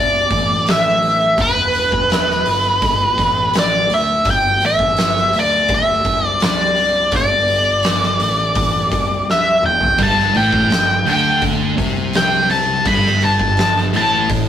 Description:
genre	stoner and doom metal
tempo	84 BPM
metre	4/4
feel	straight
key	unclear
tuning	A4 = 440 Hz
part	octave-fuzz lead guitar	melody	0.0-14.3 s	B4 to B5	-15 LUFS	equal	wah, distortion
part	fuzz picked electric bass	bass	0.0-14.5 s	E1 to D2	-24 LUFS	equal	overdrive
part	oversized low-tuned drum kit	drums	0.3-14.5 s	hi-hat, kick drum, snare drum, toms	-20 LUFS	equal	none
part	thick fuzz guitar	riff	10.0-14.5 s	G2 to D3	-18 LUFS	equal	distortion
room	moderate stone room reverb, RT60 0.9 s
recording	rough rehearsal-room recording, warm saturation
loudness	-13 LUFS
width	side -10 dB against mid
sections	0.0-14.5 A section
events	drum fill 9.3-10.0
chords	0.0 Em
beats	0.68 | 1.39 2.11 2.83 3.54 | 4.26 4.98 5.70 6.41 | 7.13 7.85 8.56 9.28 | 10.00 10.71 11.43 12.15 | 12.87 13.59 14.30

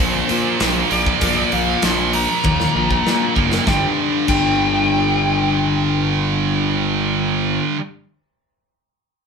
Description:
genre	hard rock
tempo	98 BPM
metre	4/4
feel	straight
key	G minor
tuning	A4 = 445 Hz
part	nasal lead guitar with a parked wah	melody	0.0-6.9 s	C5 to C6	-22 LUFS	left 1 dB	overdrive
part	overdriven semi-hollow guitar	riff	0.0-7.8 s	G2 to Bb3	-22 LUFS	left 6 dB	none
part	scooped high-gain guitar	riff	0.0-7.8 s	G2 to Bb3	-20 LUFS	right 7 dB	distortion
part	fuzz picked electric bass	bass	0.0-7.6 s	F#1 to Bb2	-22 LUFS	equal	overdrive
part	tight metal drum kit	drums	0.3-4.5 s	crash cymbal, hi-hat, kick drum, snare drum, toms	-22 LUFS	equal	none
room	moderate studio reverb, RT60 0.5 s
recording	band playing live in one room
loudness	-15 LUFS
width	side -5 dB against mid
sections	0.0-3.7 A section; 3.7-6.1 B section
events	drum fill 2.4-3.7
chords	0.0 Bb5; 3.7 G5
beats	0.60 | 1.21 1.83 2.44 3.05 | 3.67 4.28 4.90 5.51

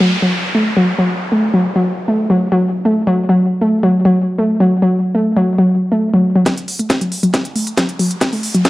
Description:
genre	driving peak-time techno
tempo	137 BPM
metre	4/4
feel	straight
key	F# minor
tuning	A4 = 437 Hz
part	warbly dusty pluck	riff	0.0-8.6 s	F#3 to A3	-13 LUFS	equal	chorus, overdrive, sidechain pumping, tape echo
part	downlifter and riser	sound effects	0.0-3.0, 7.1-8.7 s	none	-24 LUFS	equal	none
part	electronic kick drum	drums	6.5-8.7 s	none	-18 LUFS	equal	overdrive, high-pass filter on kick, studio reverb
part	techno drum kit	drums	6.5-8.7 s	hi-hat, snare drum	-19 LUFS	equal	overdrive, studio reverb, sidechain pumping on hats, sidechain pumping on perc
room	moderate stone room reverb, RT60 1.1 s, digital ambience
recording	dry, gritty hardware recording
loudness	-12 LUFS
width	side -17 dB against mid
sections	0.0-6.5 A section; 6.5-8.7 B section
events	build-up 6.5-8.7; drum fill 6.5-8.7; riser 7.1-8.7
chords	none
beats	0.33 0.77 | 1.21 1.64 2.08 2.52 | 2.96 3.40 3.83 4.27 | 4.71 5.15 5.58 6.02 | 6.46 6.90 7.34 7.78 | 8.21 8.65

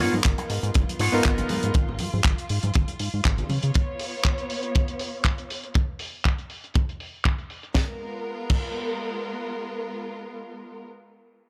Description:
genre	nu-disco, nu disco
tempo	120 BPM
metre	4/4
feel	swing 55% on 16ths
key	G# dorian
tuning	A4 = 437 Hz
part	bright electric grand piano	accompaniment	0.0-1.7 s	B3 to A#4	-30 LUFS	equal	sidechain pumping, analog delay
part	warm studio string section	sustained chords	0.0-10.8 s	G#3 to C#5	-36 LUFS	equal	sidechain pumping, low-pass filter
part	electric guitar with an envelope filter	riff	0.0-1.7 s	B3 to C#5	-30 LUFS	equal	lush chorus, analog delay
part	chorused synth bass	bass	0.0-3.7 s	G#1 to C#3	-29 LUFS	equal	sidechain pumping
part	congas	percussion	0.1-3.6 s	none	-37 LUFS	equal	none
part	tight funk drum kit	drums	0.2-8.7 s	crash cymbal, handclaps, hi-hat, snare drum	-33 LUFS	equal	low-pass filter on hats, low-pass filter on toms, low-pass filter on cymbals, low-pass filter on snare, low-pass filter on perc, low-pass filter on room
part	kick drum	drums	0.3-8.7 s	none	-25 LUFS	equal	none
room	small room ambience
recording	dry, gritty hardware recording, transformer saturation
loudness	-26 LUFS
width	mono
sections	0.0-7.7 A section; 7.7-11.5 B section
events	filter sweep on drum 0.0-7.7; filter sweep on analog synth bass 0.0-3.7; filter sweep on string section 0.0-5.7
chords	0.0 G#m69; 3.5 C#7; 5.7 N.C.; 7.7 G#m69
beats	0.25 0.75 1.25 | 1.75 2.25 2.75 3.25 | 3.75 4.25 4.75 5.25 | 5.75 6.25 6.75 7.25 | 7.75 8.25 8.75 9.25 | 9.75 10.25 10.75

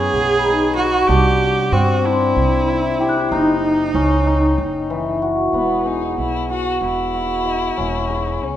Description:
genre	contemporary instrumental, chamber music in an uneven meter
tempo	189 BPM (eighths)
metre	7/8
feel	straight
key	unclear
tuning	A4 = 439 Hz
part	clear viola	second line	0.0-5.2 s	D#4 to G#4	-20 LUFS	right 3 dB	none
part	cimbalom	arpeggios	0.0-8.6 s	E3 to D#5	-18 LUFS	left 2 dB	none
part	upright bass	bass	0.0-8.6 s	E1 to G2	-22 LUFS	right 2 dB	none
part	large celesta	texture	0.4-3.6 s	B5 to F#6	-28 LUFS	left 2 dB	none
part	warm violin	melody	5.5-8.6 s	B3 to F#4	-26 LUFS	left 6 dB	none
room	wet recital hall reverb, RT60 1.7 s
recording	nothing above 11.0 kHz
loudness	-15 LUFS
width	side -11 dB against mid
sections	0.0-5.5 A section; 5.5-8.6 B section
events	none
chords	0.0 B; 1.1 C; 3.3 F#5; 5.5 Esus2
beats	0.14 0.45 0.77 | 1.09 1.41 1.73 2.04 2.36 2.68 3.00 | 3.31 3.63 3.95 4.27 4.59 4.90 5.22 | 5.54 5.86 6.18 6.50 6.81 7.13 7.45 | 7.77 8.09 8.41

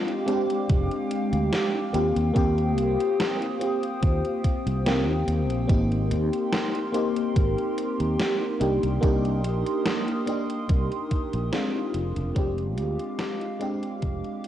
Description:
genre	vaporwave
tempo	72 BPM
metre	4/4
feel	straight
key	F dorian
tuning	A4 = 440 Hz
part	FM electric piano with soft pad layer	accompaniment	0.0-14.5 s	Ab3 to G4	-26 LUFS	left 1 dB	phaser, lush chorus, analog delay
part	warbly tape-like pad	sustained chords	0.0-14.5 s	Ab3 to Eb6	-34 LUFS	right 1 dB	chorus, built-in reverb, phaser
part	gated 80s digital drum machine	drums	0.1-14.5 s	hi-hat, snare drum	-31 LUFS	equal	gated reverb, gated reverb snare, overdrive
part	fretless electric bass	bass	0.7-14.2 s	F1 to Eb2	-26 LUFS	equal	none
part	electronic kick drum	drums	0.7-14.2 s	none	-23 LUFS	equal	overdrive
room	light reverb, digital ambience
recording	worn, warbling old tape, cassette tape, warbly pitch drift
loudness	-23 LUFS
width	side -11 dB against mid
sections	0.0-14.5 A section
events	fade-out 10.1-14.5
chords	0.0 Fm69; 1.9 Eb69; 5.7 Abmaj9; 8.6 Cm7; 11.9 Fm69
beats	0.69 1.53 | 2.36 3.19 4.03 4.86 | 5.69 6.53 7.36 8.19 | 9.03 9.86 10.69 11.53 | 12.36 13.19 14.03

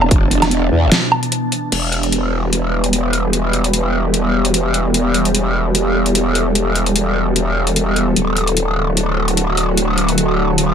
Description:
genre	heavy wobble dubstep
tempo	149 BPM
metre	4/4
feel	swing 54% on 16ths, half-time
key	E minor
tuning	A4 = 440 Hz
part	evolving wavetable pad	sustained chords	0.0-10.7 s	B2 to A5	-19 LUFS	equal	ensemble chorus, built-in reverb, phaser, sidechain pumping
part	growl bass	bass	0.0-10.7 s	D1 to E2	-17 LUFS	equal	chorus, overdrive
part	dubstep drum kit	drums	0.0-10.7 s	crash cymbal, hi-hat, snare drum, woodblock	-18 LUFS	equal	overdrive
room	moderate digital room reverb, RT60 1.1 s, digital ambience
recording	none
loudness	-14 LUFS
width	side -8 dB against mid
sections	0.0-1.7 A section; 1.7-10.7 B section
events	drop 0.0-1.7; break 0.9-1.7; filter sweep on ambient pad 1.7-10.7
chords	0.0 E5; 1.7 Em; 8.2 D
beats	| 0.11 0.51 0.92 1.32 | 1.72 2.12 2.53 2.93 | 3.33 3.73 4.14 4.54 | 4.94 5.35 5.75 6.15 | 6.55 6.96 7.36 7.76 | 8.16 8.57 8.97 9.37 | 9.78 10.18 10.58

